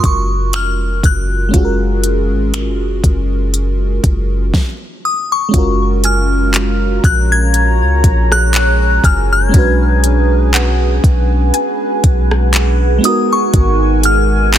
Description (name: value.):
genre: contemporary R&B.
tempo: 60 BPM.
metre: 4/4.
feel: swing 54% on 16ths.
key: F# major.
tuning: A4 = 440 Hz.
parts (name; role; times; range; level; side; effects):
glassy synth bell; melody; 0.0-14.6 s; C#6 to G#6; -17 LUFS; left 2 dB; chorus, phaser, tape echo.
FM electric piano with soft pad layer; accompaniment; 0.0-14.6 s; G#3 to B4; -19 LUFS; right 1 dB; chorus.
warm 808-style bass; bass; 0.0-14.6 s; E#1 to C#2; -14 LUFS; equal; none.
smooth R&B drum kit; drums; 0.0-14.6 s; finger snaps, handclaps, hi-hat, kick drum, rim click, snare drum; -14 LUFS; equal; soft clipping on snare.
deep dark ambient pad; sustained chords; 6.4-14.6 s; G#4 to A#5; -20 LUFS; right 1 dB; chorus, built-in reverb.
soft round pluck; texture; 6.0-13.5 s; F#5 to G#5; -27 LUFS; left 2 dB; chorus, tape echo.
room: digital ambience.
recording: dense, heavily limited modern master.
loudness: -11 LUFS.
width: side -11 dB against mid.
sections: 0.0-5.5 A section; 5.5-14.6 B section.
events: none.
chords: 0.0 F#maj9; 9.5 Bm6; 13.0 G#m7.